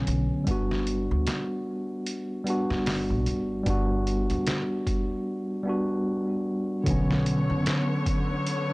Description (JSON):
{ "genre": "trip hop", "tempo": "75 BPM", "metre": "4/4", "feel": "swing 58% on 16ths", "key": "unclear", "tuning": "A4 = 439 Hz", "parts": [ { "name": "mellow tine electric piano", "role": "accompaniment", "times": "0.0-8.7 s", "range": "D3 to F#4", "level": "-27 LUFS", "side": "equal", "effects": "harmonic tremolo, tape echo" }, { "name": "upright bass", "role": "bass", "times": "0.0-7.6 s", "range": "F#1 to D2", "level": "-29 LUFS", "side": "equal", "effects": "tube saturation" }, { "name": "trip hop sampler-style drum kit", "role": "drums", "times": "0.1-8.7 s", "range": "hi-hat, kick drum, snare drum", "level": "-30 LUFS", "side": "equal", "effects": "none" }, { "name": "dark chamber string section", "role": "sustained chords", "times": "6.9-8.7 s", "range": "D3 to C#5", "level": "-32 LUFS", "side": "left 2 dB", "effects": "none" } ], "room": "small room ambience", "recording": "dry, gritty hardware recording, cassette tape", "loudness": "-25 LUFS", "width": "side -23 dB against mid", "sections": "0.0-6.9 A section; 6.9-8.7 B section", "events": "none", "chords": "0.5 Gmaj7; 6.9 Bmadd9" }